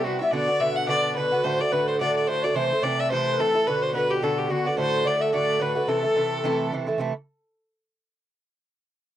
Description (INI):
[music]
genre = celtic folk, Celtic reel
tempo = 216 BPM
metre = 4/4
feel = swing 57% on 8ths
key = A dorian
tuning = A4 = 440 Hz
[part]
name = rich fiddle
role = melody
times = 0.0-6.7 s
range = F#4 to F#5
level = -25 LUFS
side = equal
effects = slapback echo
[part]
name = bright reedy baroque flute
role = second line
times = 0.0-6.7 s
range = F#4 to F#5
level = -28 LUFS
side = left 4 dB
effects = none
[part]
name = Irish bouzouki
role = accompaniment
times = 0.0-7.1 s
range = A2 to F#4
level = -25 LUFS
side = right 3 dB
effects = none
[sound]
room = little or no reverb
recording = dry, close 1970s-style studio recording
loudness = -21 LUFS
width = side -11 dB against mid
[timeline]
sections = 0.0-7.0 A section; 7.0-8.1 B section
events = none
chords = 0.3 Bm; 1.4 D; 2.5 Am; 3.7 Bm; 4.8 D; 5.9 Am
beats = 0.05 | 0.33 0.60 0.88 1.16 | 1.44 1.72 1.99 2.27 | 2.55 2.83 3.10 3.38 | 3.66 3.94 4.21 4.49 | 4.77 5.05 5.32 5.60 | 5.88 6.16 6.43 6.71 | 6.99